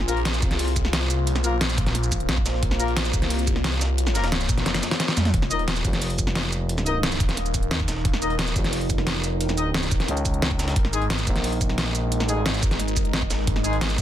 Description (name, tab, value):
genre	dark technical drum and bass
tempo	177 BPM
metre	4/4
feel	straight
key	unclear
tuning	A4 = 440 Hz
part	deep dark ambient pad	sustained chords	0.0-14.0 s	Ab3 to G5	-31 LUFS	equal	chorus, built-in reverb, sidechain pumping
part	phased detuned saw bass	bass	0.0-14.0 s	Eb1 to F2	-25 LUFS	equal	phaser
part	dubstep drum kit	drums	0.0-14.0 s	hi-hat, shaker, snare drum, toms	-26 LUFS	equal	none
part	warm brass ensemble	stabs	0.1-13.8 s	Ab3 to Eb5	-30 LUFS	left 4 dB	ping-pong delay
part	breakbeat sampler-style drum kit	drums	0.1-14.0 s	hi-hat, snare drum	-36 LUFS	equal	none
part	electronic kick drum	drums	0.4-14.0 s	none	-25 LUFS	equal	none
part	growling FM bass	bass	5.8-14.0 s	F1 to Db2	-26 LUFS	equal	none
room	little or no reverb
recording	dense, heavily limited modern master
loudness	-21 LUFS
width	side -11 dB against mid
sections	0.0-14.0 A section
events	kick drops out 4.7-5.3; drum fill 4.7-5.3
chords	0.0 Bbmadd9; 5.3 Eb; 10.8 Ab5